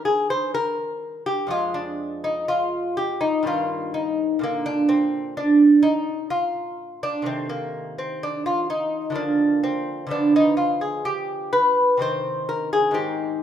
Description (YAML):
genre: classical, baroque-style dance for lute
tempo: 63 BPM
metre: 3/4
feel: rubato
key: C minor from 10.1 s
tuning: A4 = 441 Hz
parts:
  - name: lute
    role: solo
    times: 0.0-13.4 s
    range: F2 to C5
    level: -20 LUFS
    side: right 1 dB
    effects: none
room: moderate recital hall reverb, RT60 1.6 s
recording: minimal, uncompressed stereo recording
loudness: -20 LUFS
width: side -9 dB against mid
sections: 0.0-13.4 A section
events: none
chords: 0.0 Eb; 1.5 Fm13; 3.5 Eb/G; 4.4 Bb; 7.3 Adim/C; 9.2 Bb/D; 10.1 Ddim7; 12.0 Cm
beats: 0.55 | 1.52 2.50 3.47 | 4.43 5.38 6.33 | 7.29 8.23 9.17 | 10.12 11.08 12.01 | 12.96